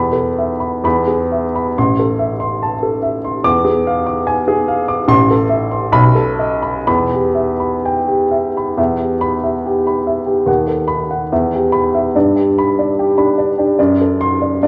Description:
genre	classical, romantic character piece for solo piano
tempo	62-75 BPM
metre	2/4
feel	rubato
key	E minor from 5.1 s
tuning	A4 = 443 Hz
part	dark upright piano	solo	0.0-14.7 s	A1 to D6	-16 LUFS	equal	none
room	wet recital hall reverb, RT60 1.4 s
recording	worn, warbling old tape, cassette tape, warbly pitch drift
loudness	-16 LUFS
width	mono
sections	0.0-8.8 A section; 8.8-14.7 B section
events	none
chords	0.0 Esus4; 0.8 E; 1.8 Am; 3.5 E7b9; 5.1 Am; 6.0 B7; 6.9 Em; 10.5 B7/D#; 11.3 Em; 12.1 G; 13.8 D7/F#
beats	0.84 | 1.76 2.62 | 3.46 4.27 | 5.09 5.95 | 6.87 7.84 | 8.78 9.63 | 10.48 11.31 | 12.15 12.97 | 13.77 14.59

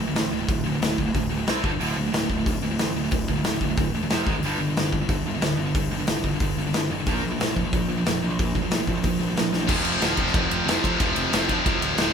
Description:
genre	heavy metal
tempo	182 BPM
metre	4/4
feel	straight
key	unclear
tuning	A4 = 440 Hz
part	distorted electric guitar	riff	0.0-12.1 s	D2 to C4	-28 LUFS	right 8 dB	overdrive
part	scooped high-gain guitar	riff	0.0-12.1 s	D2 to C4	-29 LUFS	left 8 dB	distortion
part	fuzz picked electric bass	bass	0.0-12.1 s	D1 to F2	-29 LUFS	equal	overdrive
part	big rock drum kit	drums	0.2-12.1 s	crash cymbal, hi-hat, kick drum, ride cymbal, snare drum	-25 LUFS	equal	none
part	high-gain distorted guitar	riff	9.7-12.1 s	F2 to F3	-25 LUFS	left 2 dB	distortion
room	light reverb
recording	band playing live in one room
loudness	-21 LUFS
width	side -7 dB against mid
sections	0.0-9.7 A section; 9.7-12.1 B section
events	drum fill 9.5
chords	0.0 D5; 1.5 C5; 1.6 G5; 1.8 D5; 4.1 F5; 4.3 G#5; 4.4 G5; 7.1 Bb5; 9.7 F5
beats	0.15 | 0.48 0.81 1.14 1.47 | 1.80 2.13 2.46 2.79 | 3.12 3.45 3.77 4.11 | 4.43 4.76 5.09 5.42 | 5.75 6.08 6.41 6.74 | 7.07 7.40 7.73 8.06 | 8.38 8.71 9.04 9.37 | 9.70 10.03 10.35 10.68 | 11.01 11.34 11.66 11.99

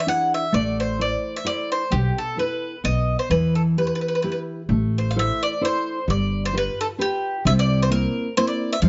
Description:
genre	italian folk, Italian serenade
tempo	130 BPM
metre	3/4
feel	swing 55% on 8ths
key	E minor, A minor from 4.7 s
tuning	A4 = 440 Hz
part	bowl-back mandolin	melody	0.0-8.9 s	G4 to F#5	-26 LUFS	equal	plate reverb
part	nylon-string guitar	accompaniment	0.1-8.9 s	C3 to C5	-27 LUFS	equal	none
part	upright bass	bass	0.5-8.9 s	G1 to F2	-25 LUFS	equal	none
room	light reverb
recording	nothing above 7.6 kHz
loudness	-22 LUFS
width	mono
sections	0.0-4.7 A section; 4.7-8.9 B section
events	none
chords	0.0 E7; 0.5 Am; 1.9 B7sus4; 2.8 B; 3.3 Em; 4.7 Am; 6.1 G7; 7.5 C7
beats	0.07 | 0.54 1.00 1.46 | 1.92 2.38 2.84 | 3.30 3.76 4.23 | 4.70 5.16 5.62 | 6.08 6.54 7.00 | 7.46 7.91 8.37 | 8.83

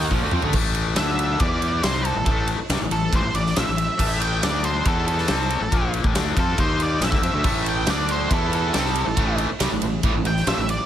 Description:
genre	quiet-loud alternative rock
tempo	139 BPM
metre	4/4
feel	straight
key	unclear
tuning	A4 = 440 Hz
part	octave-fuzz lead guitar	melody	0.0-10.9 s	A4 to G5	-26 LUFS	right 2 dB	distortion
part	biting overdriven guitar	riff	0.0-0.5, 7.4-10.8 s	A2 to E4	-27 LUFS	right 13 dB	none
part	distorted electric guitar	riff	0.0-10.8 s	A2 to F4	-26 LUFS	left 6 dB	distortion
part	fuzz fingered electric bass	bass	0.0-10.8 s	A1 to F2	-26 LUFS	equal	overdrive
part	huge arena drum kit	drums	0.0-10.8 s	crash cymbal, kick drum, ride cymbal, snare drum, toms	-24 LUFS	equal	none
room	light reverb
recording	none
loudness	-19 LUFS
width	side -10 dB against mid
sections	0.5-10.9 A section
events	drum fill 0.1-0.5; lead electric guitar solo 0.5-10.9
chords	0.1 Am; 0.5 A5; 1.0 D5; 1.4 E5; 1.8 Am; 4.4 D5; 4.9 E5; 5.3 Am; 6.6 D#5; 7.0 A5; 7.9 D5; 8.3 E5; 8.7 Am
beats	0.11 | 0.54 0.97 1.40 1.83 | 2.26 2.69 3.13 3.56 | 3.99 4.42 4.85 5.28 | 5.71 6.15 6.58 7.01 | 7.44 7.87 8.30 8.74 | 9.17 9.60 10.03 10.46

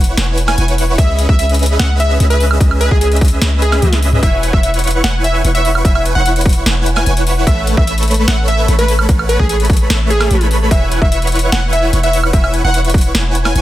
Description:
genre	future bass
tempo	148 BPM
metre	4/4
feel	half-time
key	E major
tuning	A4 = 440 Hz
part	dense compressed supersaw	riff	0.0-13.6 s	A3 to C#6	-18 LUFS	right 1 dB	sidechain pumping
part	warm 808-style bass	bass	0.0-13.6 s	E1 to C#2	-14 LUFS	equal	sidechain pumping
part	trap drum kit	drums	0.0-13.6 s	hi-hat, snare drum, toms, woodblock	-19 LUFS	equal	overdrive, studio reverb
part	plucky unison lead	melody	0.5-13.6 s	G#4 to G#5	-19 LUFS	equal	sidechain pumping, tape echo
part	electronic kick drum	drums	1.0-13.0 s	none	-13 LUFS	equal	overdrive, studio reverb
room	little or no reverb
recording	dense, heavily limited modern master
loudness	-10 LUFS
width	side -14 dB against mid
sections	0.0-13.6 A section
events	drum fill 3.8-4.2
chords	0.0 E6; 1.0 C#m7; 4.2 E6; 7.5 A6; 10.7 E6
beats	0.17 0.58 | 0.98 1.39 1.79 2.20 | 2.61 3.01 3.42 3.82 | 4.23 4.63 5.04 5.44 | 5.85 6.25 6.66 7.07 | 7.47 7.88 8.28 8.69 | 9.09 9.50 9.90 10.31 | 10.71 11.12 11.53 11.93 | 12.34 12.74 13.15 13.55

